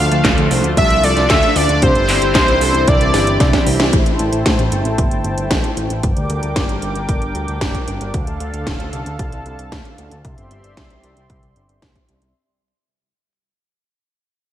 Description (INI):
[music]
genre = italo disco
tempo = 114 BPM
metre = 4/4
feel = straight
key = D minor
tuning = A4 = 439 Hz
[part]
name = wide unison lead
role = melody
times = 0.0-3.7 s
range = C5 to F5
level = -17 LUFS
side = equal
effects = ping-pong delay
[part]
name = warm analog pad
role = sustained chords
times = 0.0-12.3 s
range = D3 to D6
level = -24 LUFS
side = left 1 dB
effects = chorus, tremolo, vintage 12-bit sampler grit
[part]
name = chorused polysynth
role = stabs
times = 0.0-3.9 s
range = E3 to D5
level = -21 LUFS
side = right 1 dB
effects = tape echo
[part]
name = fat analog bass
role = bass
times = 0.0-12.3 s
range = D1 to A2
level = -20 LUFS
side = equal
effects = none
[part]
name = house drum kit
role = drums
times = 0.1-12.3 s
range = handclaps, hi-hat, snare drum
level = -20 LUFS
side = equal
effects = gated reverb
[part]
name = electronic kick drum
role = drums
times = 0.2-12.1 s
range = none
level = -18 LUFS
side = equal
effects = none
[sound]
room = light reverb, digital ambience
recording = vinyl crackle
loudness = -13 LUFS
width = side -11 dB against mid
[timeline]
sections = 0.0-3.9 A section; 3.9-12.4 B section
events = drum fill 3.1-3.9; band accent 3.8; fade-out 3.9-12.4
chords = 0.0 Dm; 1.8 Cadd9; 3.9 Am7; 6.0 Gm; 8.1 Dm; 10.2 Cadd9